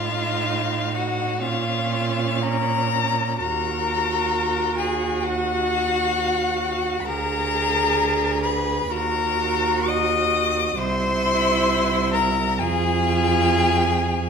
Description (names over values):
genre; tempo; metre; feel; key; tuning
classical, slow romantic movement for string quartet; 65 BPM; 4/4; rubato; Bb minor; A4 = 436 Hz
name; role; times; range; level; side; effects
rich violin; melody; 0.0-14.3 s; F5 to Eb6; -24 LUFS; left 7 dB; none
rich violin; second line; 0.0-14.3 s; F4 to Eb5; -27 LUFS; left 1 dB; none
rich viola; accompaniment; 0.0-14.3 s; Db4 to Ab4; -26 LUFS; right 4 dB; none
rich cello; bass; 0.0-14.3 s; C2 to Bb2; -26 LUFS; right 5 dB; none
room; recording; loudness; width
wet recital hall reverb, RT60 1.5 s; minimal, uncompressed stereo recording; -19 LUFS; side -6 dB against mid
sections
0.0-14.3 A section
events
none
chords
0.0 F7/A; 1.4 Bbm; 3.4 Ebm; 7.1 Bb7/D; 8.9 Ebm; 10.8 C; 12.6 Fm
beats
0.49 1.42 2.44 | 3.40 4.33 5.25 6.17 | 7.08 7.99 8.91 9.89 | 10.79 11.69 12.60 13.52